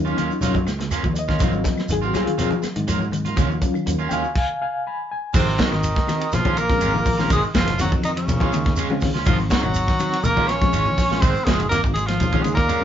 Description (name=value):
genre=afrobeat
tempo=122 BPM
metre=4/4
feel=straight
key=Ab mixolydian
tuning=A4 = 441 Hz
part: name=overdriven reed electric piano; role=accompaniment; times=0.0-12.5 s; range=Gb3 to Cb6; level=-26 LUFS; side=left 3 dB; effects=fast tremolo
part: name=electric guitar at the edge of break-up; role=stabs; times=0.0-12.8 s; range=Eb3 to Gb4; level=-28 LUFS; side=right 4 dB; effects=none
part: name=fingered electric bass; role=bass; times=0.0-12.7 s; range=Gb1 to Ab2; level=-26 LUFS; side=right 1 dB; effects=none
part: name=semi-hollow electric guitar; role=arpeggios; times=0.1-12.8 s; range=C3 to Gb3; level=-28 LUFS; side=left 4 dB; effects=none
part: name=shekere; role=percussion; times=0.1-12.8 s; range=none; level=-30 LUFS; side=right 2 dB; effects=none
part: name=tight funk drum kit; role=drums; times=0.2-12.8 s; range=crash cymbal, hi-hat, kick drum, ride cymbal, snare drum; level=-23 LUFS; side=equal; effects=none
part: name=claves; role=percussion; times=0.2-12.8 s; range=none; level=-42 LUFS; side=left 2 dB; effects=none
part: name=congas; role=percussion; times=0.2-12.4 s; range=none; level=-29 LUFS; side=left 2 dB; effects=none
part: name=bright tenor saxophone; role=melody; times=5.3-12.8 s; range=C4 to Db5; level=-24 LUFS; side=equal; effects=none
part: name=trombone with metal mute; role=second line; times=5.4-12.8 s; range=C3 to Db4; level=-26 LUFS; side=right 2 dB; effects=none
part: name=brilliant bass trombone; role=second line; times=12.4-12.8 s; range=Ab2 to Bb2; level=-29 LUFS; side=left 3 dB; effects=none
room=wet studio reverb, RT60 0.5 s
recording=band playing live in one room, nothing above 7.6 kHz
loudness=-18 LUFS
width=side -10 dB against mid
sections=0.0-5.3 A section; 5.3-12.8 B section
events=reed electric piano solo 0.0-5.3; stop 4.4-5.3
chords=0.0 Ebm9; 1.4 Ab13; 3.4 Ebm9; 5.3 Ab7; 6.3 Bbm7; 7.3 Ab7; 8.3 Bbm7; 9.3 Ab7; 10.2 Bbm7; 11.2 Ab7; 12.2 Bbm7